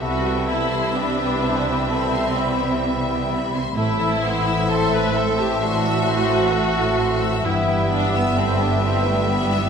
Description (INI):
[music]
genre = classical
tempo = 65 BPM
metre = 4/4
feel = rubato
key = unclear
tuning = A4 = 440 Hz
[part]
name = warm studio violin section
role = melody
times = 0.0-9.7 s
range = E5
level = -29 LUFS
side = left 7 dB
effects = none
[part]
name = mellow hollow large flute ensemble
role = second line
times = 0.0-9.7 s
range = G5 to B5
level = -30 LUFS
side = left 3 dB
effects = none
[part]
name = warm cor anglais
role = second line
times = 0.0-9.7 s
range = E5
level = -29 LUFS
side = right 1 dB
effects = none
[part]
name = warm studio violin section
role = second line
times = 0.0-9.7 s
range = B4 to E6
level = -30 LUFS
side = left 4 dB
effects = none
[part]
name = rich studio viola section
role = accompaniment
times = 0.0-9.7 s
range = A3 to B4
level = -25 LUFS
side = right 2 dB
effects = none
[part]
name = warm bassoon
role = accompaniment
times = 0.0-9.7 s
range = G3 to D4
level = -29 LUFS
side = right 1 dB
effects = none
[part]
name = clear trombone section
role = sustained chords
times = 0.0-9.7 s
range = E3 to A3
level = -31 LUFS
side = right 3 dB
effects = none
[part]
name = warm French horn section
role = sustained chords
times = 0.0-9.7 s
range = B3 to E4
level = -31 LUFS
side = left 5 dB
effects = none
[part]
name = concert harp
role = arpeggios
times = 0.0-9.7 s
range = G2 to E6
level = -32 LUFS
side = left 8 dB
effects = none
[part]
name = mellow trumpet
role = stabs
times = 0.0-9.7 s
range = A3 to B4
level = -29 LUFS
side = right 1 dB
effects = none
[part]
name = rich studio double bass section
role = bass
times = 0.0-9.7 s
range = G1 to C2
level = -26 LUFS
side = right 3 dB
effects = none
[part]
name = warm symphonic cello section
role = bass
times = 0.0-9.7 s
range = G2 to C3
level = -26 LUFS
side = right 3 dB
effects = none
[sound]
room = wet scoring stage reverb, RT60 1.7 s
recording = none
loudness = -18 LUFS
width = side -6 dB against mid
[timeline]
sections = 0.0-9.7 A section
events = none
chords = 0.0 Cmaj7; 3.8 Am; 7.5 Em/G